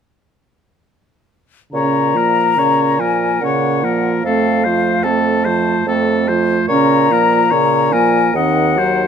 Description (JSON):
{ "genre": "classical, slow romantic movement for wind quintet", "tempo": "73 BPM", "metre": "3/4", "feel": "rubato", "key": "Bb minor", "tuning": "A4 = 440 Hz", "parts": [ { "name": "mellow silver concert flute", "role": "melody", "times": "1.7-9.1 s", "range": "F5 to Bb5", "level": "-17 LUFS", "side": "left 7 dB", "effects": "none" }, { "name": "mellow clarinet", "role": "accompaniment", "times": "1.7-9.1 s", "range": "A3 to Eb4", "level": "-21 LUFS", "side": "right 9 dB", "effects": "none" }, { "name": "warm French horn", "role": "accompaniment", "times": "1.7-9.1 s", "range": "Db3 to A3", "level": "-19 LUFS", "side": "right 2 dB", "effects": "none" }, { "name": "warm bassoon", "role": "bass", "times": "1.7-9.1 s", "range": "Eb2 to Bb2", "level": "-20 LUFS", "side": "right 4 dB", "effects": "none" }, { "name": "clear oboe", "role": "second line", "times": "1.8-9.1 s", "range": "A4 to Eb5", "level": "-20 LUFS", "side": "left 5 dB", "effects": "none" } ], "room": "light reverb", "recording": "minimal, uncompressed stereo recording", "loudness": "-12 LUFS", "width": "side -7 dB against mid", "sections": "1.7-9.1 A section", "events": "none", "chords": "1.7 Bbm; 4.2 F; 6.7 Bbm; 8.3 Cdim/Eb" }